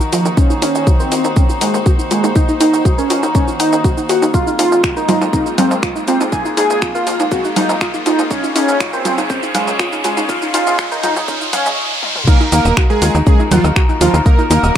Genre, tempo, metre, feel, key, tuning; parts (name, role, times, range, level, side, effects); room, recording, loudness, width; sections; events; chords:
melodic techno; 121 BPM; 4/4; straight; Eb dorian; A4 = 443 Hz
rich chamber string section; sustained chords; 0.0-14.8 s; Db3 to C5; -24 LUFS; left 2 dB; sidechain pumping
soft round pluck; arpeggios; 0.0-14.8 s; C4 to Gb6; -21 LUFS; equal; chorus, sidechain pumping, dub echo
overtone-sweeping drone; drone; 0.0-14.8 s; Eb3 to Bb3; -28 LUFS; right 1 dB; chorus, built-in reverb, phaser, sidechain pumping
house drum kit; drums; 0.0-14.8 s; congas, crash cymbal, finger snaps, hi-hat, shaker, toms; -21 LUFS; right 2 dB; sidechain pumping on perc, sidechain pumping on hats, sidechain pumping on toms, sidechain pumping on cymbals, dub echo
riser; sound effects; 3.1-12.3 s; -26 LUFS; equal
wide unison lead; melody; 0.1-14.7 s; F3 to Ab4; -17 LUFS; equal; analog chorus, sidechain pumping, dub echo
tight sequencer bass; bass; 0.1-14.7 s; Eb1 to F2; -19 LUFS; equal; sidechain pumping, high-pass filter
electronic kick drum; drums; 0.4-14.8 s; -13 LUFS; equal
big bright polysynth; second line; 12.3-14.7 s; F4 to Bb4; -20 LUFS; right 5 dB; analog chorus, sidechain pumping, dub echo
wet spring reverb, RT60 1.5 s; echo-heavy mix, high-pass filter; -12 LUFS; side -9 dB against mid
0.0-12.3 A section; 12.3-14.8 B section
build-up 0.0-12.3; filter sweep on synth arpeggio sound 0.0-12.3; filter sweep 0.0-12.3; riser 3.1-12.3; drum fill 12.0; drop 12.3-14.8
0.0 Ebm; 4.3 Fm; 8.3 Db; 12.3 Ebm